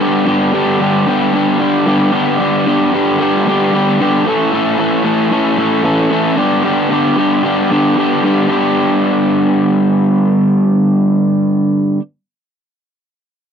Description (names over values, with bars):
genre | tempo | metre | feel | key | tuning
rock | 113 BPM | 4/4 | straight | G lydian | A4 = 441 Hz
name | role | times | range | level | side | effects
crunchy overdriven guitar | solo | 0.0-12.0 s | G2 to A4 | -11 LUFS | equal | none
room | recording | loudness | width
light reverb | dry, close 1970s-style studio recording | -11 LUFS | side -7 dB against mid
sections
0.0-8.5 A section; 8.5-12.7 B section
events
none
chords
0.0 G; 4.2 A; 6.4 G